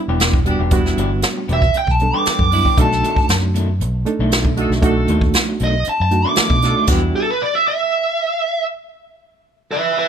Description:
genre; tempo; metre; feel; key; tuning
straight-eighth soul blues; 117 BPM; 4/4; straight; E minor; A4 = 440 Hz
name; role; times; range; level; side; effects
reed electric piano; accompaniment; 0.0-7.3 s; G3 to A4; -21 LUFS; right 4 dB; medium tremolo
electric guitar through a small old amp; stabs; 0.1-7.1 s; B2 to G4; -26 LUFS; left 5 dB; spring reverb
vintage muted fingered electric bass; bass; 0.1-7.1 s; E1 to B2; -19 LUFS; equal; none
jazz brush drum kit; drums; 0.2-7.0 s; crash cymbal, hi-hat, kick drum, snare drum; -18 LUFS; equal; none
mellow horn section; sustained chords; 0.5-7.3 s; E3 to A4; -28 LUFS; left 2 dB; none
smooth overdriven lead guitar; melody; 1.5-10.1 s; A4 to D6; -18 LUFS; right 2 dB; none
room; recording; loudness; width
little or no reverb; none; -14 LUFS; side -8 dB against mid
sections
0.0-10.1 A section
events
stop 6.9-10.1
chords
0.0 Em7; 2.8 B7#9; 6.9 Em7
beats
0.21 | 0.72 1.24 1.75 2.27 | 2.78 3.29 3.81 4.32 | 4.83 5.34 5.86 6.37 | 6.88 7.40 7.91 8.42 | 8.94 9.45 9.96

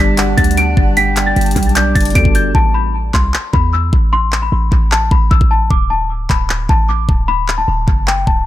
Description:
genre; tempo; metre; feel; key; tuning
hip hop, trap; 152 BPM; 4/4; half-time; A dorian; A4 = 442 Hz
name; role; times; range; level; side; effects
small celesta; melody; 0.0-8.5 s; G5 to D7; -17 LUFS; left 3 dB; low-pass filter, analog delay
soft octave-layered synth lead; second line; 0.0-2.5 s; D5 to G5; -23 LUFS; right 4 dB; chorus, analog delay
mellow tine electric piano; accompaniment; 0.0-2.6 s; G3 to A4; -21 LUFS; left 2 dB; fast stereo tremolo, low-pass filter, analog delay
airy breathy pad; sustained chords; 0.0-2.5 s; G3 to A5; -22 LUFS; right 2 dB; chorus
warm 808-style bass; bass; 0.0-8.5 s; C1 to E2; -16 LUFS; equal; none
trap drum kit; drums; 0.2-8.4 s; handclaps, hi-hat, kick drum; -15 LUFS; equal; none
room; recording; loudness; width
digital ambience; echo-heavy mix; -11 LUFS; side -14 dB against mid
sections
0.0-2.5 A section; 2.5-8.5 B section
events
hi-hats muted 2.5-8.5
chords
0.0 Gmaj7; 2.5 Amadd9; 5.7 D5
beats
0.18 0.57 | 0.97 1.36 1.76 2.15 | 2.55 2.94 3.34 3.73 | 4.13 4.52 4.92 5.31 | 5.71 6.10 6.50 6.89 | 7.29 7.68 8.07

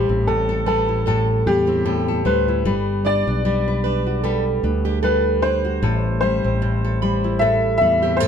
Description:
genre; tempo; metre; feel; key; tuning
acoustic pop; 76 BPM; 4/4; swing 55% on 16ths; unclear; A4 = 443 Hz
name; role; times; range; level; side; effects
clear upright piano; melody; 0.0-8.3 s; G4 to E5; -21 LUFS; left 2 dB; none
nylon-string guitar; accompaniment; 0.0-8.3 s; A2 to B4; -23 LUFS; left 3 dB; none
fingerpicked plugged-in steel-string acoustic guitar; arpeggios; 0.0-8.3 s; G4 to B5; -26 LUFS; right 9 dB; none
fretless electric bass; bass; 0.0-8.3 s; G1 to E2; -22 LUFS; right 1 dB; none
room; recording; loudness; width
light reverb; band playing live in one room; -17 LUFS; side -8 dB against mid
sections
0.0-8.3 A section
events
none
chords
0.0 Am7; 2.7 Gmaj7; 5.8 Am7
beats
0.27 1.07 1.86 | 2.65 3.45 4.24 5.04 | 5.83 6.62 7.42 8.21

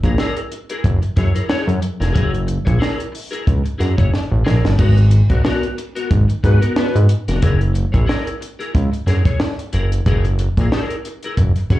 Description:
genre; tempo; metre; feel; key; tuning
funk; 91 BPM; 4/4; swing 56% on 16ths; F# mixolydian; A4 = 440 Hz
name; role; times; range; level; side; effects
clean electric guitar; accompaniment; 0.0-11.8 s; B3 to C#5; -24 LUFS; left 2 dB; ensemble chorus, slapback echo
fat analog bass; bass; 0.0-11.8 s; E#1 to G#2; -14 LUFS; equal; none
compact cocktail drum kit; drums; 0.0-11.8 s; crash cymbal, hi-hat, kick drum, snare drum; -20 LUFS; equal; vintage 12-bit sampler grit
room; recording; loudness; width
little or no reverb; live gig heard through the venue's PA, cassette tape, club reverb; -14 LUFS; side -16 dB against mid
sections
0.0-11.8 A section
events
drum fill 4.1-4.8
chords
0.0 F#9; 4.8 G#m9; 7.4 F#9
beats
0.18 0.84 1.50 | 2.16 2.82 3.48 4.13 | 4.79 5.45 6.11 6.77 | 7.42 8.08 8.74 9.40 | 10.06 10.72 11.37

